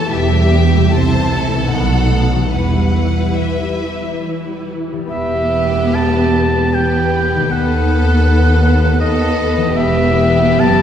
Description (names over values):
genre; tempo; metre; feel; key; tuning
classical, slow romantic movement for symphony orchestra; 67-83 BPM; 3/4; rubato; E minor; A4 = 440 Hz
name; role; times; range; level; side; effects
warm symphonic violin section; melody; 0.0-10.8 s; B4 to A5; -25 LUFS; left 4 dB; none
bright symphonic violin section; second line; 0.0-10.8 s; G4 to C5; -25 LUFS; left 2 dB; none
warm symphonic viola section; accompaniment; 0.0-10.8 s; C3 to G4; -21 LUFS; right 1 dB; none
concert harp; arpeggios; 0.0-10.8 s; B2 to B4; -22 LUFS; left 4 dB; none
dark symphonic double bass section; bass; 0.1-10.8 s; E1 to D#2; -18 LUFS; right 1 dB; none
warm studio cello section; bass; 0.1-10.8 s; D#2 to C3; -18 LUFS; right 2 dB; none
clear oboe; second line; 5.1-10.8 s; D#5 to A5; -18 LUFS; right 1 dB; none
mellow French horn section; sustained chords; 5.1-10.8 s; B3 to A4; -21 LUFS; left 4 dB; none
room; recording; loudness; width
wet scoring stage reverb, RT60 1.9 s; heard from further back in the room; -12 LUFS; side -9 dB against mid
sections
0.0-5.1 A section; 5.1-10.8 A section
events
none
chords
0.1 Em; 0.9 Am/C; 1.7 B7; 2.5 Em; 7.5 B7/D#; 9.8 Em